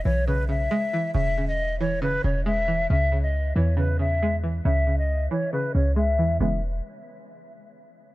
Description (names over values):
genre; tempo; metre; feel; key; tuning
hip hop, trap; 137 BPM; 4/4; half-time; E major; A4 = 442 Hz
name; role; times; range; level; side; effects
breathy mellow silver concert flute; melody; 0.0-6.6 s; B4 to E5; -27 LUFS; left 2 dB; low-pass filter
string-like resonator pluck; accompaniment; 0.0-6.6 s; C#3 to B3; -28 LUFS; right 2 dB; chorus, low-pass filter
clean 808-style bass; bass; 0.0-6.8 s; E1 to E2; -24 LUFS; equal; none
room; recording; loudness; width
small room ambience; none; -21 LUFS; side -18 dB against mid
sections
0.0-6.4 A section; 6.4-8.1 B section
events
filter sweep 0.0-6.4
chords
0.0 E6; 2.9 C#m; 6.4 E6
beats
0.27 0.71 | 1.15 1.59 2.02 2.46 | 2.90 3.34 3.78 4.21 | 4.65 5.09 5.53 5.97 | 6.40